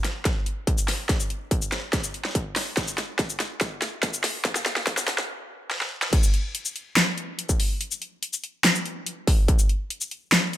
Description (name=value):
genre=dubstep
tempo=143 BPM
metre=4/4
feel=half-time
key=none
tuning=none
part: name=dubstep drum kit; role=drums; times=0.0-10.6 s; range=crash cymbal, handclaps, hi-hat, shaker, snare drum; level=-24 LUFS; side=equal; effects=high-pass filter on hats, high-pass filter on snare, high-pass filter on perc, high-pass filter on cymbals
part: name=electronic kick drum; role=drums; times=0.3-9.6 s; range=none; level=-23 LUFS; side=equal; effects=distortion
room=light reverb, digital ambience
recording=high-pass filter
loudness=-23 LUFS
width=side -13 dB against mid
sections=0.0-6.1 A section; 6.1-10.6 B section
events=build-up 0.0-6.1; drum fill 0.0-5.3, 5.7-6.1; filter sweep 0.0-6.1; stop 5.3-6.1; drop 6.1-10.6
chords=none